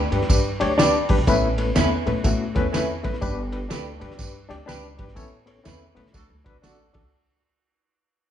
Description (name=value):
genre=uptempo 1960s-style soul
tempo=123 BPM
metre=4/4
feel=swing 63% on 8ths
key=D major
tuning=A4 = 440 Hz
part: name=upright bass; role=bass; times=0.0-7.0 s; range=G1 to A2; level=-27 LUFS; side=equal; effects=none
part: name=barky reed electric piano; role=accompaniment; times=0.1-7.1 s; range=A3 to E5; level=-24 LUFS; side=left 3 dB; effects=overdrive, fast tremolo
part: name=cloth-damped thuddy drum kit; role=drums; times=0.1-7.0 s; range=hi-hat, kick drum, ride cymbal, snare drum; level=-24 LUFS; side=equal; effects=none
part: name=tambourine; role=percussion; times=0.3-6.8 s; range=none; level=-34 LUFS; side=right 4 dB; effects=none
part: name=electric guitar through a small old amp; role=stabs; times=0.8-6.8 s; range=A3 to B4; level=-29 LUFS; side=right 5 dB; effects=spring reverb
part: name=mellow horn section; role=second line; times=6.1-7.1 s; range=D4 to A4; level=-65 LUFS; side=right 2 dB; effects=none
room=moderate large studio reverb, RT60 1.2 s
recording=band playing live in one room, nothing above 10.3 kHz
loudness=-19 LUFS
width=side -10 dB against mid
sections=0.0-7.1 A section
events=fade-out 0.0-7.1; band accent 5.2-7.1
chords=0.0 G; 1.3 Aadd9; 3.2 G; 5.2 Aadd9; 6.1 D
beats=0.30 0.79 | 1.27 1.76 2.25 2.73 | 3.22 3.71 4.19 4.68 | 5.17 5.66 6.15 6.64